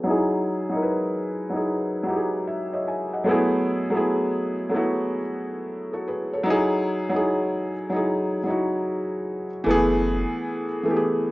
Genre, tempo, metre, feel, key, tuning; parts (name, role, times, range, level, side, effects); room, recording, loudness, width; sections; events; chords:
lo-fi hip hop; 75 BPM; 4/4; swing 65% on 16ths; F# dorian; A4 = 441 Hz
felt-muted upright piano; accompaniment; 0.0-11.3 s; E3 to G#5; -22 LUFS; equal; low-pass filter, plate reverb
smooth synth bass; bass; 9.7-10.2 s; F#1; -28 LUFS; equal
moderate studio ambience, RT60 0.5 s; rough home demo mix, nothing above 7.7 kHz; -22 LUFS; side -19 dB against mid
0.0-9.7 A section; 9.7-11.3 B section
filter sweep on felt piano 0.0-9.7; felt piano fill 1.7-3.3
0.1 Emaj9; 3.3 F#m11; 6.5 Emaj9; 9.7 F#m11